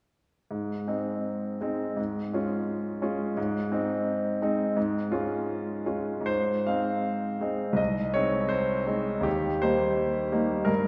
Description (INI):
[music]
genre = classical, romantic character piece for solo piano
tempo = 72-88 BPM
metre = 2/4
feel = rubato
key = Ab major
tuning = A4 = 439 Hz
[part]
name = bright concert grand piano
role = solo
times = 0.5-10.9 s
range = C2 to F5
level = -28 LUFS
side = equal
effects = none
[sound]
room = wet concert hall reverb, RT60 2.5 s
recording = none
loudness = -28 LUFS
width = mono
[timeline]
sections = 0.5-6.3 A section; 6.3-10.9 B section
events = none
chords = 0.5 Ab; 2.0 Db/Ab; 3.4 Ab; 4.8 Db/Ab; 6.3 Ab; 7.8 Ab/C; 9.3 Eb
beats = | 0.52 1.25 | 1.98 2.69 | 3.37 4.06 | 4.76 5.48 | 6.28 7.07 | 7.79 8.51 | 9.25 10.00 | 10.69